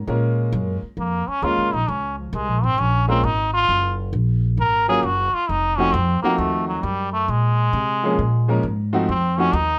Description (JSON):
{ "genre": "jazz, small-group swing and bop", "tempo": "133 BPM", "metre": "4/4", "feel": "swing 66% on 8ths", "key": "Bb minor", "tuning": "A4 = 443 Hz", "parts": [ { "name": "upright bass", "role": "bass", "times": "0.0-9.8 s", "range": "F1 to C3", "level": "-24 LUFS", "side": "equal", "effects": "none" }, { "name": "clear grand piano", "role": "accompaniment", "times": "0.1-9.5 s", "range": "F3 to Bb4", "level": "-25 LUFS", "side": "equal", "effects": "none" }, { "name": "trombone with metal mute", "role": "second line", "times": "1.0-9.8 s", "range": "F3 to Bb4", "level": "-23 LUFS", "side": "equal", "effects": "none" } ], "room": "light reverb", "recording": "close, detailed microphones", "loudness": "-21 LUFS", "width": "mono", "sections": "0.0-9.8 A section", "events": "trombone solo 0.0-9.8", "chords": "0.1 Bbm7; 3.7 Gbmaj7; 5.5 F7b9; 7.3 Bbm7; 9.1 F7b9", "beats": "| 0.09 0.54 0.98 1.44 | 1.89 2.34 2.79 3.24 | 3.69 4.14 4.59 5.04 | 5.49 5.94 6.39 6.84 | 7.29 7.74 8.19 8.64 | 9.09 9.54" }